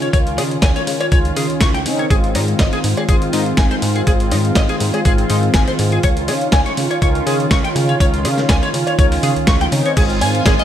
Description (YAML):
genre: nu-disco, nu disco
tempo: 122 BPM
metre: 4/4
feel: swing 54% on 16ths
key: Ab major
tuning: A4 = 440 Hz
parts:
  - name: mellow synth brass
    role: accompaniment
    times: 0.0-10.6 s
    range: Eb3 to F4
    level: -19 LUFS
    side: equal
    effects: chorus, cassette tape, sidechain pumping, ping-pong delay
  - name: clean electric guitar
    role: riff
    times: 0.0-10.6 s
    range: Eb4 to Db6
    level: -22 LUFS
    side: left 3 dB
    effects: analog chorus
  - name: chorused synth bass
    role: bass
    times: 0.0-10.6 s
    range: Ab1 to Db3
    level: -20 LUFS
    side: equal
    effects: none
  - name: dusty soul sampler-style drum kit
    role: drums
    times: 0.0-10.6 s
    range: crash cymbal, hi-hat, snare drum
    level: -22 LUFS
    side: equal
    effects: gated reverb
  - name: electronic kick drum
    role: drums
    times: 0.1-10.6 s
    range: none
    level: -15 LUFS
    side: equal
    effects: none
  - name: cowbell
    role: percussion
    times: 0.4-10.6 s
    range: none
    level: -29 LUFS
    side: right 1 dB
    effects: none
  - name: warm studio string section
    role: sustained chords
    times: 10.0-10.6 s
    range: F4 to Ab5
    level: -24 LUFS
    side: left 1 dB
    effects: sidechain pumping
room: light reverb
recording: bright 1980s-style digital production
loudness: -13 LUFS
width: side -10 dB against mid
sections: 0.0-10.0 A section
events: none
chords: 0.0 Dbmaj9; 2.1 Ab6; 6.0 Dbadd9; 10.0 Ab6